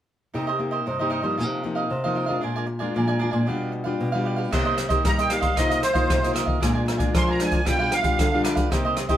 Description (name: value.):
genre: samba and choro.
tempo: 115 BPM.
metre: 4/4.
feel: straight.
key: C minor.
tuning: A4 = 444 Hz.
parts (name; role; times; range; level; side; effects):
cavaquinho; accompaniment; 0.3-9.2 s; D4 to Ab5; -27 LUFS; right 4 dB; none.
nylon-string guitar; accompaniment; 0.3-9.2 s; G2 to G4; -28 LUFS; left 3 dB; none.
nylon-string guitar; bass; 0.3-9.2 s; Bb2 to G3; -27 LUFS; equal; none.
open jazz drum kit; drums; 4.5-9.2 s; crash cymbal, hi-hat, kick drum, rim click; -24 LUFS; equal; none.
musette accordion; melody; 5.1-8.4 s; C5 to C6; -24 LUFS; right 1 dB; none.
room: moderate studio reverb, RT60 0.6 s.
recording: band playing live in one room.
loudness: -21 LUFS.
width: side -11 dB against mid.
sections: 0.3-4.5 A section; 4.5-9.2 B section.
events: none.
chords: 0.3 Cm7; 1.4 F7sus4/C; 2.4 Bb7; 3.5 G7/B; 4.5 Cm7; 5.6 F7sus4/C; 6.6 Bb7; 7.7 G7/B.